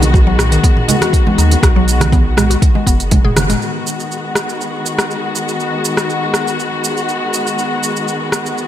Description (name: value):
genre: afro house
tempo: 121 BPM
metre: 4/4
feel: swing 53% on 16ths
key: G# minor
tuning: A4 = 439 Hz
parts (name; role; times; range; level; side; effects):
- muted studio string section; sustained chords; 0.0-8.7 s; D#3 to F#4; -18 LUFS; left 2 dB; sidechain pumping
- round analog bass; bass; 0.0-3.6 s; F#1 to D#2; -15 LUFS; equal; sidechain pumping
- afro-pop drum kit; drums; 0.0-8.7 s; hi-hat, rim click, shaker, toms; -19 LUFS; right 1 dB; studio ambience
- congas; percussion; 0.0-3.6 s; none; -21 LUFS; right 3 dB; none
- mallet-like synth pluck; arpeggios; 0.1-3.6 s; D#3 to G#4; -19 LUFS; equal; chorus, phaser, sidechain pumping, dub echo
- electronic kick drum; drums; 0.1-3.2 s; none; -12 LUFS; equal; studio ambience
room: light reverb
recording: none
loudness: -12 LUFS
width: side -11 dB against mid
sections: 0.0-3.6 A section; 3.6-8.7 B section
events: drum fill 3.2-3.6; band accent 3.4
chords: 0.0 B6; 3.6 G#m7